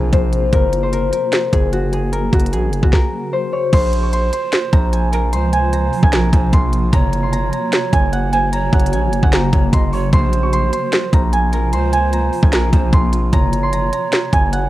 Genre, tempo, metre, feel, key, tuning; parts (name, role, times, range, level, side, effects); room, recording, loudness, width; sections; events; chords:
hip hop, trap; 150 BPM; 4/4; half-time; Bb minor; A4 = 441 Hz
Celtic harp; melody; 0.0-14.7 s; Gb4 to Db6; -20 LUFS; left 1 dB; low-pass filter, cassette tape
granular cloud pad; sustained chords; 0.0-14.7 s; C3 to Gb4; -24 LUFS; left 1 dB; built-in reverb, cassette tape
distorted 808-style bass; bass; 0.0-14.7 s; Gb1 to Db2; -18 LUFS; equal; distortion
trap drum kit; drums; 0.1-14.6 s; crash cymbal, hi-hat, kick drum, snare drum; -15 LUFS; equal; cassette tape
breathy bright large pan pipes; second line; 3.7-14.7 s; Bb4 to Eb5; -25 LUFS; right 9 dB; cassette tape, tape echo
little or no reverb; home recording on cassette; -13 LUFS; side -15 dB against mid
0.0-3.7 A section; 3.7-14.7 B section
0.0 Bbsus2; 0.5 Gb; 3.7 Bbsus2; 6.9 Gb; 10.1 Bbsus2; 13.3 Gb